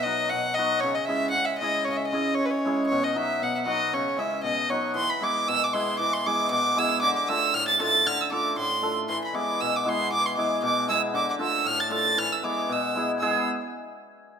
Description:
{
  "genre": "balkan folk",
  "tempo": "117 BPM",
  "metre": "2/4",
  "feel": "swing 55% on 16ths",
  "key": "C# minor, E phrygian dominant from 5.0 s",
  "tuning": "A4 = 440 Hz",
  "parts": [
    { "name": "warm violin", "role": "melody", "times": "0.0-13.4 s", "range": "B4 to A6", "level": "-24 LUFS", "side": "right 1 dB", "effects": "none" },
    { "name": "hammered dulcimer", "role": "accompaniment", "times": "0.0-13.5 s", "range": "A2 to A4", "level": "-27 LUFS", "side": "left 1 dB", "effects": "none" }
  ],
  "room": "moderate recital hall reverb, RT60 1.5 s",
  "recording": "none",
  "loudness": "-22 LUFS",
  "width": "side -7 dB against mid",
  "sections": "0.0-5.0 A section; 5.0-13.2 B section; 13.2-14.3 C section",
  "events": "none",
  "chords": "0.0 B; 0.8 C#m; 2.9 B; 3.9 C#m; 4.4 B; 5.0 E; 7.0 Dm; 9.1 E; 11.1 Dm; 12.2 E"
}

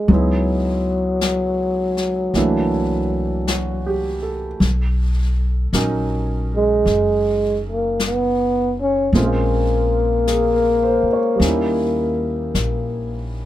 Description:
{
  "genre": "jazz ballad",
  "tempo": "53 BPM",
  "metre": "4/4",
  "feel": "swing 68% on 8ths",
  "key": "unclear",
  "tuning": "A4 = 440 Hz",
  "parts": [
    { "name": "breathy trombone", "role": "melody", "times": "0.0-13.3 s", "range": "Gb3 to C#4", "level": "-19 LUFS", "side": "left 1 dB", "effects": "none" },
    { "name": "warm concert grand piano", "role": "accompaniment", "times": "0.0-13.5 s", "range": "E3 to Db5", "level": "-23 LUFS", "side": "right 3 dB", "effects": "none" },
    { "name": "upright bass", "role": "bass", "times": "0.1-13.5 s", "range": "F#1 to Eb2", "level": "-22 LUFS", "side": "equal", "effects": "none" },
    { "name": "jazz brush drum kit", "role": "drums", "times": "0.1-13.5 s", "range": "brushed snare drum, hi-hat, snare drum", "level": "-28 LUFS", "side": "left 4 dB", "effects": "none" }
  ],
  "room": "light reverb",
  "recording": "minimal, uncompressed stereo recording",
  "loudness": "-17 LUFS",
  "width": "side -13 dB against mid",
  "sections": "0.0-13.5 A section",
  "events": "none",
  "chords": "0.1 Dbm11; 2.3 C13; 4.6 Bmaj9; 9.1 Bbm7; 11.4 Eb7b9"
}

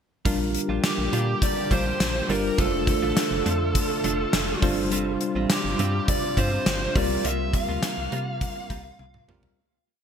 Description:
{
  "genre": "1980s-style pop",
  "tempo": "103 BPM",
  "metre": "4/4",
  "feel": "straight",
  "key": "unclear",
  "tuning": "A4 = 439 Hz",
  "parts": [
    { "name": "tine electric piano", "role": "accompaniment", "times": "0.2-9.6 s", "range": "G3 to C5", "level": "-29 LUFS", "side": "left 1 dB", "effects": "medium stereo tremolo" },
    { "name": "sweeping resonant pad", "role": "sustained chords", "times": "0.3-9.6 s", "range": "C3 to G4", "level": "-35 LUFS", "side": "equal", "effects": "chorus" },
    { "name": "direct-recorded clean electric guitar", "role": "riff", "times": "0.3-9.5 s", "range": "G3 to F4", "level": "-33 LUFS", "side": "right 4 dB", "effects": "lush chorus, digital delay" },
    { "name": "solid FM bass", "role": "bass", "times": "0.3-9.5 s", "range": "F1 to C3", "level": "-30 LUFS", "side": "equal", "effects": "none" },
    { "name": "gated 80s drum kit", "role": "drums", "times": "0.3-9.6 s", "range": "hi-hat, kick drum, snare drum, tambourine, toms", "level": "-25 LUFS", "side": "equal", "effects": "gated reverb" },
    { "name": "bluesy overdriven lead guitar", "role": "melody", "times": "0.8-9.3 s", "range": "G4 to F5", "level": "-28 LUFS", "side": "right 2 dB", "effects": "distortion, digital delay" }
  ],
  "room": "light reverb",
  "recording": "bright 1980s-style digital production",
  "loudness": "-22 LUFS",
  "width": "side -7 dB against mid",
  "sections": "0.3-9.6 pre-chorus",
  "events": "fade-out 7.2-9.6; drum fill 9.0-9.6",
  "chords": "0.3 Bb6; 2.6 F6; 4.6 G7sus4; 7.0 C7sus4"
}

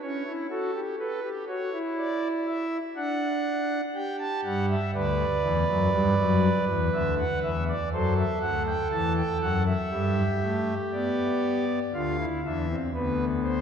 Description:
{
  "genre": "classical, baroque-style 3-part fugue for pipe organ",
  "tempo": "60 BPM",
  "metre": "4/4",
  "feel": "straight",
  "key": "G major",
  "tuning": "A4 = 440 Hz",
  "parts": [
    { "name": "pipe organ, foundations", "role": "solo", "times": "0.0-13.6 s", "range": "D2 to A5", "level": "-24 LUFS", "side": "equal", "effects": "none" }
  ],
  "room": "wet church reverb, RT60 3.4 s",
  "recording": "none",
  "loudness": "-24 LUFS",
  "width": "side -7 dB against mid",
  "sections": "0.0-11.9 A section; 11.9-13.6 B section",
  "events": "none",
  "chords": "0.0 A7/C#; 2.0 D; 4.0 G; 5.9 D69; 7.9 D7; 9.9 G; 11.9 Bdim/D"
}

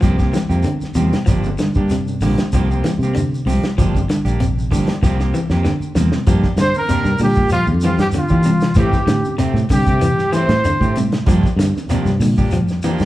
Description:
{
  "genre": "afrobeat",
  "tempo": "96 BPM",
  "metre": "4/4",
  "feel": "straight",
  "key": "G dorian",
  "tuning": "A4 = 441 Hz",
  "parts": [
    { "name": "electric guitar at the edge of break-up", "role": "arpeggios", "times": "0.0-13.1 s", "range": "C3 to F3", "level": "-22 LUFS", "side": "left 2 dB", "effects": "none" },
    { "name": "electric guitar at the edge of break-up", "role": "stabs", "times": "0.0-13.0 s", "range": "E3 to G4", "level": "-25 LUFS", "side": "right 2 dB", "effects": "none" },
    { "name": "fingered electric bass", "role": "bass", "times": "0.0-13.1 s", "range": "G1 to E3", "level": "-19 LUFS", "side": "equal", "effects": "none" },
    { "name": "warm soul drum kit", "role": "drums", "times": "0.0-13.1 s", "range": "hi-hat, kick drum, snare drum", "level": "-20 LUFS", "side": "equal", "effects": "none" },
    { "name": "shekere", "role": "percussion", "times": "0.0-13.1 s", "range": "none", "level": "-26 LUFS", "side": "equal", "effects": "none" },
    { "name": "congas", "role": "percussion", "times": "0.3-13.0 s", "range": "none", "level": "-25 LUFS", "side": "right 1 dB", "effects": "none" },
    { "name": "breathy trumpet", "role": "melody", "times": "6.6-11.0 s", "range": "F4 to C5", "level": "-20 LUFS", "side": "equal", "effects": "none" },
    { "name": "bright trumpet", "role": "second line", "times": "6.6-10.9 s", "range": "F4 to C5", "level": "-27 LUFS", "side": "right 1 dB", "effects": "none" }
  ],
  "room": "moderate large studio reverb, RT60 1.3 s",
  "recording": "band playing live in one room, vinyl crackle",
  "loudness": "-14 LUFS",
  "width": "side -15 dB against mid",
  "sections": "0.0-6.3 A section; 6.3-13.1 B section",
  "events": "drum fill 5.0-6.3",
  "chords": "0.0 C7sus4; 1.3 Gm7; 2.5 C7sus4; 3.8 Gm7; 5.0 C7sus4; 6.3 Gm7; 8.8 Am7; 11.3 Gm7"
}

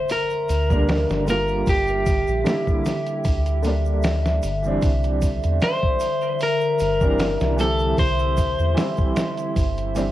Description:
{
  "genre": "trip hop",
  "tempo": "76 BPM",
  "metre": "4/4",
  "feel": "swing 54% on 16ths",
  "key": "G dorian",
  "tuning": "A4 = 440 Hz",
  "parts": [
    { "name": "electric guitar at the edge of break-up", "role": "melody", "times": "0.0-10.1 s", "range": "G4 to C5", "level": "-23 LUFS", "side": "left 1 dB", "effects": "cassette tape, tape echo" },
    { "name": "warbly tape-like pad", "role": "sustained chords", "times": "0.0-10.1 s", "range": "D3 to E5", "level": "-28 LUFS", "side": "equal", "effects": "chorus, built-in reverb, vintage 12-bit sampler grit, cassette tape" },
    { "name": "impact", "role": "sound effects", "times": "0.0-1.7 s", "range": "none", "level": "-48 LUFS", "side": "equal", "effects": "none" },
    { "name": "dusty soul sampler-style drum kit", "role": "drums", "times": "0.1-10.1 s", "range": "hi-hat, kick drum, snare drum", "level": "-24 LUFS", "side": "equal", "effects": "cassette tape" },
    { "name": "egg shaker", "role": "percussion", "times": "0.1-10.1 s", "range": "none", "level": "-46 LUFS", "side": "right 7 dB", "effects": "none" },
    { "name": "round analog bass", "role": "bass", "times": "0.5-10.1 s", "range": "G1 to E2", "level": "-23 LUFS", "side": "equal", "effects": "none" },
    { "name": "felt-muted upright piano", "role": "accompaniment", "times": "0.7-10.1 s", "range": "D3 to G4", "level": "-26 LUFS", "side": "right 2 dB", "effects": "tremolo, cassette tape" }
  ],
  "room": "light reverb",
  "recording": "home recording on cassette",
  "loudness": "-19 LUFS",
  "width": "side -14 dB against mid",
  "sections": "0.0-10.1 A section",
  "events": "impact 0.0-1.7",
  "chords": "0.0 Gm; 4.8 Cadd9"
}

